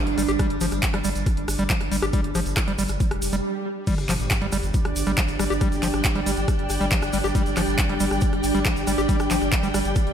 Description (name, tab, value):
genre	psychedelic trance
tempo	138 BPM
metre	4/4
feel	straight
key	unclear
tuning	A4 = 440 Hz
part	evolving wavetable pad	sustained chords	0.0-10.1 s	G3 to D4	-28 LUFS	right 3 dB	chorus, built-in reverb, phaser, sidechain pumping
part	round analog bass	bass	0.1-10.1 s	F1 to G1	-28 LUFS	equal	none
part	drum and bass drum kit	drums	0.1-10.1 s	crash cymbal, handclaps, hi-hat, rim click	-29 LUFS	equal	overdrive
part	overdriven acid bass	riff	0.2-9.8 s	F3 to G4	-28 LUFS	moving between left 5 dB and right 4 dB	distortion, auto-pan, sidechain pumping, analog delay
part	tube shaker	percussion	0.2-10.0 s	none	-35 LUFS	right 3 dB	none
part	electronic kick drum	drums	0.4-10.0 s	none	-23 LUFS	equal	overdrive
part	swell and sub drop	sound effects	3.1-5.6 s	none	-33 LUFS	right 1 dB	none
part	dark studio string section	texture	3.9-10.1 s	G4 to G5	-30 LUFS	left 2 dB	sidechain pumping
room	moderate lush hall reverb, RT60 2.1 s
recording	dreamy mix soaked in reverb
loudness	-20 LUFS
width	side -8 dB against mid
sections	0.0-3.9 A section; 3.9-10.1 B section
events	swell 3.1-3.9; stop 3.4-3.9; drop 3.9-10.1; impact 3.9-5.6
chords	0.0 G5